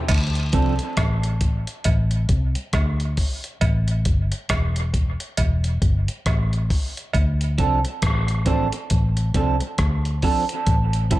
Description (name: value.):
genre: dub reggae.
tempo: 68 BPM.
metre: 4/4.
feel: swing 60% on 16ths.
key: D minor.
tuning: A4 = 440 Hz.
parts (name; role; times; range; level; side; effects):
vintage muted fingered electric bass; bass; 0.1-11.2 s; E1 to D2; -21 LUFS; equal; none.
dusty soul sampler-style drum kit; drums; 0.1-11.2 s; crash cymbal, hi-hat, kick drum, rim click; -23 LUFS; equal; none.
cowbell and jawbone-type rattle; percussion; 0.1-7.4 s; none; -31 LUFS; right 5 dB; dub echo.
electric guitar at the edge of break-up; accompaniment; 0.5-0.7, 7.6-11.2 s; F3 to A4; -25 LUFS; right 5 dB; analog chorus, dub echo.
room: light reverb, digital ambience.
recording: none.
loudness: -19 LUFS.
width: side -17 dB against mid.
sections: 0.1-11.2 A section.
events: part muted 7.1-11.2.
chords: 0.1 D7(no3); 3.6 A5; 7.1 Dm7; 10.7 Am7.